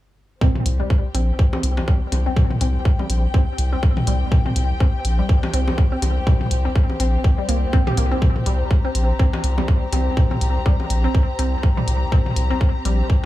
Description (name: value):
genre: minimal techno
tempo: 123 BPM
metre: 4/4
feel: swing 57% on 16ths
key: unclear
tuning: A4 = 438 Hz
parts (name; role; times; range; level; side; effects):
- hollow square pluck; riff; 0.4-12.9 s; G3 to G4; -28 LUFS; equal; chorus, phaser, sidechain pumping, tape echo
- electronic kick drum; drums; 0.4-13.2 s; none; -16 LUFS; equal; none
- electronic toms and bongos; percussion; 0.4-12.3 s; none; -27 LUFS; left 1 dB; analog delay
- dark studio string section; texture; 0.4-13.3 s; C4 to Bb5; -29 LUFS; left 1 dB; sidechain pumping
- round analog bass; bass; 0.7-13.0 s; Bb1 to C2; -19 LUFS; equal; sidechain pumping
- electronic hi-hat; drums; 0.7-13.0 s; none; -30 LUFS; left 2 dB; none
room: light reverb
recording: echo-heavy mix, faint mains hum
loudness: -17 LUFS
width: side -15 dB against mid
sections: 0.4-13.3 A section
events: none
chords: 0.4 C5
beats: | 0.41 0.90 1.39 1.88 | 2.37 2.85 3.34 3.83 | 4.32 4.80 5.29 5.78 | 6.27 6.75 7.24 7.73 | 8.22 8.71 9.19 9.68 | 10.17 10.66 11.15 11.63 | 12.12 12.61 13.10